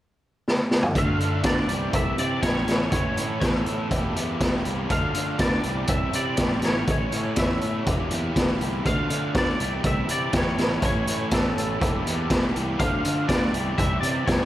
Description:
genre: indie rock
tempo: 122 BPM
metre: 4/4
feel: straight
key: D minor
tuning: A4 = 440 Hz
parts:
  - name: raw garage drum kit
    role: drums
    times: 0.5-14.4 s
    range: hi-hat, kick drum, snare drum, toms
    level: -24 LUFS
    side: equal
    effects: none
  - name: distorted electric guitar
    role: riff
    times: 0.9-14.5 s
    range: A2 to G4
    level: -29 LUFS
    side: equal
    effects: distortion, slapback echo
  - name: twangy electric guitar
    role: melody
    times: 1.0-14.5 s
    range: A4 to F5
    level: -30 LUFS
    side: equal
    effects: ensemble chorus, slapback echo
  - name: fuzz fingered electric bass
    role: bass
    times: 1.0-14.5 s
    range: E1 to D3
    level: -29 LUFS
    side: equal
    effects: overdrive
room: moderate recital hall reverb, RT60 1.4 s, studio reverb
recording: big arena sound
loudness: -21 LUFS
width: side -13 dB against mid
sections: 0.9-14.5 A section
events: drum fill 0.5-0.9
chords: 0.0 N.C.; 0.9 Dm; 1.7 C; 2.7 A; 3.9 Edim; 4.9 Dm; 5.6 Cadd9; 6.6 A; 7.9 Edim; 8.8 Dm; 9.6 C; 10.6 A; 11.8 Edim; 12.8 Dm; 13.5 C

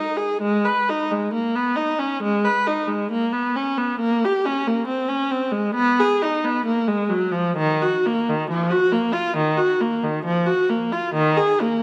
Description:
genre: classical, baroque-style suite movement for unaccompanied viola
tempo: 67 BPM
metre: 4/4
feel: rubato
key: unclear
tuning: A4 = 438 Hz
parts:
  - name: clear viola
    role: solo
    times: 0.0-11.8 s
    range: Eb3 to Cb5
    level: -21 LUFS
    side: equal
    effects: none
room: wet recital hall reverb, RT60 1.5 s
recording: dark, warm production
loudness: -21 LUFS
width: mono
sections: 0.0-11.8 A section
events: none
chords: none

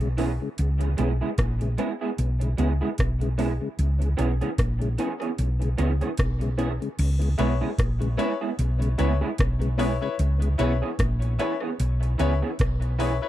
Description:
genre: dub reggae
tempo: 75 BPM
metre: 4/4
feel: swing 58% on 16ths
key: C# dorian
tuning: A4 = 439 Hz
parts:
  - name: mellow tonewheel organ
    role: accompaniment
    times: 0.0-10.5 s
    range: C#3 to E4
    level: -33 LUFS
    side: left 3 dB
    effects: chorus vibrato, slow rotary speaker, dub echo
  - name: hollow-body short-scale fingered electric bass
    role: bass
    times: 0.0-13.2 s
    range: A#1 to C#2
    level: -24 LUFS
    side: equal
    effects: none
  - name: booming analog drum machine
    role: drums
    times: 0.0-13.2 s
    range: crash cymbal, hi-hat, kick drum, rim click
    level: -27 LUFS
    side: equal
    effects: overdrive
  - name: electric guitar through a small old amp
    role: accompaniment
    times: 0.2-13.1 s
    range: E3 to G#4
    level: -30 LUFS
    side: right 4 dB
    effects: ensemble chorus, dub echo
  - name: bright grand piano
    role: stabs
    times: 7.4-13.3 s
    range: E4 to C#5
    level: -31 LUFS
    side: left 7 dB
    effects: dub echo
room: little or no reverb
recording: dry, close 1970s-style studio recording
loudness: -22 LUFS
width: side -13 dB against mid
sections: 0.0-7.0 A section; 7.0-13.3 A section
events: break 0.0-7.0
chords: 0.0 C#m7

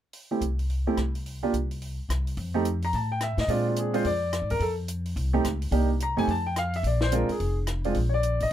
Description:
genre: jazz piano trio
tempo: 215 BPM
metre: 4/4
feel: swing 62% on 8ths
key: unclear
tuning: A4 = 441 Hz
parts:
  - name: compact cocktail drum kit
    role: drums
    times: 0.1-8.5 s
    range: hi-hat, rim click, snare drum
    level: -38 LUFS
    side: left 2 dB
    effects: none
  - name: warm baby grand piano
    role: melody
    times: 0.3-8.5 s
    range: Ab3 to Bb5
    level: -26 LUFS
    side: right 1 dB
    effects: none
  - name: upright bass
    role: bass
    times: 0.4-8.5 s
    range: F1 to Bb2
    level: -27 LUFS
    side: left 1 dB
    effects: none
room: little or no reverb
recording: none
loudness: -24 LUFS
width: side -11 dB against mid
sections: 0.1-2.4 A section; 2.4-8.5 B section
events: none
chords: 0.1 N.C.; 2.4 F; 3.5 Bb9; 4.6 F5; 5.7 Cm7; 6.3 F; 6.8 Bb9

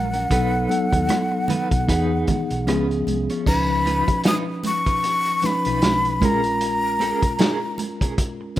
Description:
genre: lush 1970s-style soul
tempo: 76 BPM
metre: 4/4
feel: swing 58% on 16ths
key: unclear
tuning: A4 = 440 Hz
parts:
  - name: breathy mellow jazz flute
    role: melody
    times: 0.0-7.8 s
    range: F#5 to D#6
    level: -23 LUFS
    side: left 1 dB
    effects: none
  - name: mellow tine electric piano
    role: accompaniment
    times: 0.0-8.6 s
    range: E3 to B4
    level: -24 LUFS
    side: left 2 dB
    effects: medium stereo tremolo
  - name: clean electric guitar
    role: riff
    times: 0.0-8.4 s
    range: C#4 to C#5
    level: -31 LUFS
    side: right 5 dB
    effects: tremolo
  - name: hollow-body short-scale fingered electric bass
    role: bass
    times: 0.0-7.3 s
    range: A#1 to E2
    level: -26 LUFS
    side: equal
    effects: none
  - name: vintage drum kit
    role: drums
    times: 0.1-8.6 s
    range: crash cymbal, hi-hat, kick drum, rim click, snare drum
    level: -23 LUFS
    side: equal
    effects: none
  - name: congas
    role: percussion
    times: 0.7-8.6 s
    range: none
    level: -28 LUFS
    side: right 5 dB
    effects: none
room: light reverb, small room ambience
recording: rough home demo mix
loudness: -18 LUFS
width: side -13 dB against mid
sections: 0.0-3.5 A section; 3.5-8.6 B section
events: none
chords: 0.3 B7; 1.9 Emaj7; 2.7 C#7; 3.5 C#9; 6.2 A#m7

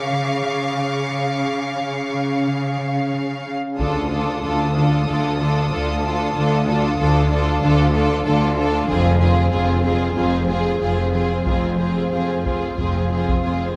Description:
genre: cinematic, suspense film score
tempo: 92 BPM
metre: 4/4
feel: straight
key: D harmonic minor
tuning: A4 = 441 Hz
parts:
  - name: warm symphonic violin section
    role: melody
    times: 0.0-13.8 s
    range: Ab4 to E#5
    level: -29 LUFS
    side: equal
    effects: none
  - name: glassy FM pad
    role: sustained chords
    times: 0.0-13.8 s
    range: C#4 to E#5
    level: -29 LUFS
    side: equal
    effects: ensemble chorus, built-in reverb
  - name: concert harp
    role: riff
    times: 0.0-13.8 s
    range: F2 to D4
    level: -27 LUFS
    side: equal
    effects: none
  - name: rich symphonic cello section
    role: bass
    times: 0.0-13.8 s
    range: D2 to C#3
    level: -27 LUFS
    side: equal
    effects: none
  - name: warm symphonic violin section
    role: texture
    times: 0.0-8.5 s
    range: A5 to Eb6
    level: -35 LUFS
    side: equal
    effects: none
  - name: warm symphonic violin section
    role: second line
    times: 3.8-13.8 s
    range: F4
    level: -29 LUFS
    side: equal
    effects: none
  - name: warm symphonic viola section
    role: accompaniment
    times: 3.8-13.8 s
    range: C4 to D4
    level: -29 LUFS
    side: equal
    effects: none
  - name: warm symphonic double bass section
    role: bass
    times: 3.8-13.8 s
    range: F1 to D2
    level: -26 LUFS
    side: equal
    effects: none
  - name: taiko ensemble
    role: drums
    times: 3.8-13.8 s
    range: none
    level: -29 LUFS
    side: equal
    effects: none
room: moderate scoring stage reverb, RT60 1.9 s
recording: close, detailed microphones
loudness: -20 LUFS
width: mono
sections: 0.0-3.8 A section; 3.8-13.8 A section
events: none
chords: 0.0 C#; 3.8 Dm; 8.9 Fm

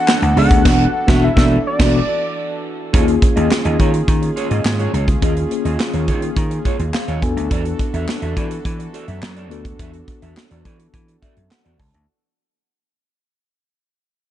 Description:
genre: early-eighties boogie funk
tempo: 105 BPM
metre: 4/4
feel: straight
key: unclear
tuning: A4 = 440 Hz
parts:
  - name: fat analog lead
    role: melody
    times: 0.0-2.6 s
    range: D5 to F#5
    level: -20 LUFS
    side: left 1 dB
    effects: chorus, slapback echo
  - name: mellow tine electric piano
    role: accompaniment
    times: 0.0-12.1 s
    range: A#3 to A5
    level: -22 LUFS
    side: left 2 dB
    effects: medium stereo tremolo
  - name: warm analog pad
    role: sustained chords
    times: 0.0-12.0 s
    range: D#3 to A4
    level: -29 LUFS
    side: right 1 dB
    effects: chorus
  - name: modern studio drum kit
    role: drums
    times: 0.1-12.1 s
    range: crash cymbal, handclaps, hi-hat, kick drum, snare drum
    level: -18 LUFS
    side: equal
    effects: none
  - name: electric guitar at the edge of break-up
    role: riff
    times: 0.2-12.0 s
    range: E#4 to E5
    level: -28 LUFS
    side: right 6 dB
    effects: lush chorus
  - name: vintage slap bass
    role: bass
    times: 0.2-12.0 s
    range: E1 to E3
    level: -19 LUFS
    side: equal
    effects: none
room: small room ambience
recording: dark, warm production, nothing above 10.3 kHz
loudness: -14 LUFS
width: side -12 dB against mid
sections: 0.0-2.9 A section; 2.9-12.1 B section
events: band accent 0.7-2.9; fade-out 2.9-12.1; tine electric piano fill 6.7-7.5, 10.9-12.1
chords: 0.0 E9sus4; 2.9 D#9sus4; 7.2 E9sus4

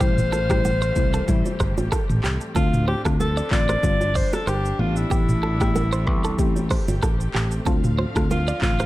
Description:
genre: afrobeats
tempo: 94 BPM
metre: 4/4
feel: swing 55% on 16ths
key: unclear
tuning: A4 = 440 Hz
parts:
  - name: breathy alto saxophone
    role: melody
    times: 0.0-8.9 s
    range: E4 to D5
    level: -26 LUFS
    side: left 1 dB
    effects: digital delay
  - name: soft round pluck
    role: accompaniment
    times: 0.0-8.8 s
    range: B2 to G4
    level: -28 LUFS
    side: left 3 dB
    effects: chorus
  - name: clear studio string section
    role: sustained chords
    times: 0.0-8.9 s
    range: B2 to F5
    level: -34 LUFS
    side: left 1 dB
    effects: sidechain pumping
  - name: clean electric guitar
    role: riff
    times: 0.0-8.9 s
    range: G4 to D5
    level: -31 LUFS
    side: right 4 dB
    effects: digital delay
  - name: fingered electric bass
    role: bass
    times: 0.0-8.9 s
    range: G1 to D2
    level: -24 LUFS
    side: equal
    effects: none
  - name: afro-pop drum kit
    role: drums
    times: 0.0-8.9 s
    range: handclaps, hi-hat, kick drum, rim click, shaker, toms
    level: -23 LUFS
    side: equal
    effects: none
  - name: congas and bongos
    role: percussion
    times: 0.0-8.9 s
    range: none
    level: -31 LUFS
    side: right 4 dB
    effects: none
room: digital ambience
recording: none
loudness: -19 LUFS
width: side -16 dB against mid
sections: 0.0-8.9 A section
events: none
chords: 0.0 Fmaj9#11/A; 1.3 Am7; 2.6 Dm7; 3.8 G7sus4; 4.8 Am11; 6.4 Am7; 7.7 Dm7

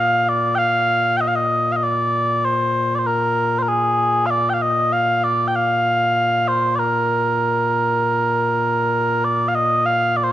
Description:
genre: scottish traditional, Scottish pipe music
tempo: 97 BPM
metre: 4/4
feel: straight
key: Bb mixolydian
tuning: A4 = 440 Hz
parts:
  - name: mellow small bagpipes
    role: solo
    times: 0.0-10.3 s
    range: Bb2 to G5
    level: -16 LUFS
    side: equal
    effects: none
room: moderate recital hall reverb, RT60 1.4 s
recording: close, detailed microphones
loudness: -16 LUFS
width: side -13 dB against mid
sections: 0.0-9.2 A section; 9.2-10.3 A section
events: none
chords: none

